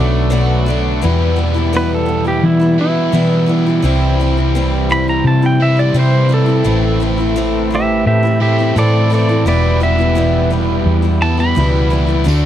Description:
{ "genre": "folk rock and heartland rock", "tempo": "85 BPM", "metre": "4/4", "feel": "straight", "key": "E minor", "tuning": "A4 = 440 Hz", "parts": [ { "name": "pedal steel guitar", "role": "melody", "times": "0.0-12.5 s", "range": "E4 to B5", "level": "-18 LUFS", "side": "right 2 dB", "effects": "none" }, { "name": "picked acoustic archtop guitar", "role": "accompaniment", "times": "0.0-12.5 s", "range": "E2 to F#4", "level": "-20 LUFS", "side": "left 4 dB", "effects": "none" }, { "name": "hand-pumped harmonium", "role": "sustained chords", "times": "0.0-12.5 s", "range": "F#3 to A4", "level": "-28 LUFS", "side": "right 3 dB", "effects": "none" }, { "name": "crunchy overdriven guitar", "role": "riff", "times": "0.0-12.5 s", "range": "E2 to F#4", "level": "-19 LUFS", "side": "right 1 dB", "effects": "none" }, { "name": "hollow-body short-scale fingered electric bass", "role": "bass", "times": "0.0-12.5 s", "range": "E1 to E3", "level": "-15 LUFS", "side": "equal", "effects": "none" }, { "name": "tambourine", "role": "percussion", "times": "12.3-12.4 s", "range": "none", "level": "-30 LUFS", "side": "right 8 dB", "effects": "none" } ], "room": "little or no reverb", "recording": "dry, close 1970s-style studio recording", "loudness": "-12 LUFS", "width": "side -11 dB against mid", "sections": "0.0-1.0 A section; 1.0-12.5 B section", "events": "pedal steel guitar solo 1.0-12.5", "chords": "0.0 Bm7; 1.0 Em; 3.9 C; 6.7 Am; 9.5 Em" }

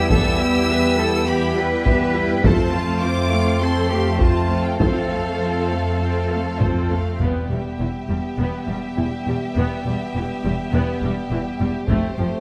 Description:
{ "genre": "cinematic, epic orchestral film score", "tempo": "102 BPM", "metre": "4/4", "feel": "straight", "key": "E phrygian", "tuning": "A4 = 440 Hz", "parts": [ { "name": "rich symphonic violin section", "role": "melody", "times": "0.0-12.4 s", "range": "C5 to E6", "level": "-32 LUFS", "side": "equal", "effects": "none" }, { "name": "rich symphonic violin section", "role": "second line", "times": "0.0-12.4 s", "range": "G4 to G5", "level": "-33 LUFS", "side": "equal", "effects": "none" }, { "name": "rich studio viola section", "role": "accompaniment", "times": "0.0-12.3 s", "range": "E3 to G4", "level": "-28 LUFS", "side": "equal", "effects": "none" }, { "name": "warm French horn section", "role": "sustained chords", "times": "0.0-12.4 s", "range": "G3 to C4", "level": "-29 LUFS", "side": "equal", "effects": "none" }, { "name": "rich studio cello section", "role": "bass", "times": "0.0-12.3 s", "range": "E2 to B4", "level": "-28 LUFS", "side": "equal", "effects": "none" }, { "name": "warm studio double bass section", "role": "bass", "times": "0.0-12.3 s", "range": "E1 to F2", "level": "-26 LUFS", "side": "equal", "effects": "none" }, { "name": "taiko ensemble", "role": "drums", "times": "0.1-8.3, 11.9-12.4 s", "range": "none", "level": "-23 LUFS", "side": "equal", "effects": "none" }, { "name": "timpani", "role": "percussion", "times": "7.2-8.1 s", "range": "E2", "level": "-30 LUFS", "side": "equal", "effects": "none" } ], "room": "moderate scoring stage reverb, RT60 2.1 s", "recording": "none", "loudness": "-21 LUFS", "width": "mono", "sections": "0.0-7.2 A section; 7.2-12.4 B section", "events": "none", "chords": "0.0 Em; 2.4 F; 7.2 Em; 11.9 F" }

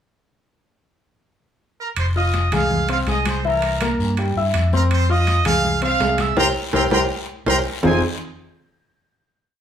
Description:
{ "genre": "latin, salsa", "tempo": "164 BPM", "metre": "4/4", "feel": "straight", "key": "F minor", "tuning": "A4 = 440 Hz", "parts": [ { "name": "bright trumpet section", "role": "melody", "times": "1.8-8.0 s", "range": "Bb4 to E6", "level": "-22 LUFS", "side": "right 3 dB", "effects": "none" }, { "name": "fingered electric bass", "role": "bass", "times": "2.0-8.0 s", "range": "F1 to G2", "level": "-22 LUFS", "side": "equal", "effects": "none" }, { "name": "congas", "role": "percussion", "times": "2.0-7.9 s", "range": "none", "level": "-28 LUFS", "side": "equal", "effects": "none" }, { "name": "guiro", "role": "percussion", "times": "2.0-7.9 s", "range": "none", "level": "-35 LUFS", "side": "left 5 dB", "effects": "none" }, { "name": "timbales", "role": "percussion", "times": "2.0-7.9 s", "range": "none", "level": "-27 LUFS", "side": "right 4 dB", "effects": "none" }, { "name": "warm grand piano", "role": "accompaniment", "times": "2.2-8.0 s", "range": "E3 to F6", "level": "-22 LUFS", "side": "left 3 dB", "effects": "none" } ], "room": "moderate large studio reverb, RT60 0.9 s", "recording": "band playing live in one room", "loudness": "-17 LUFS", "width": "side -9 dB against mid", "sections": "0.5-2.0 pickup bar; 2.0-7.8 montuno (vamp); 7.8-9.3 final chord", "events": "band accent 6.4-7.8; drum fill 7.3-7.8", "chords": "0.5 N.C.; 2.0 Fm7; 3.4 C7; 4.9 Fm7; 6.4 C5; 7.8 Fm7" }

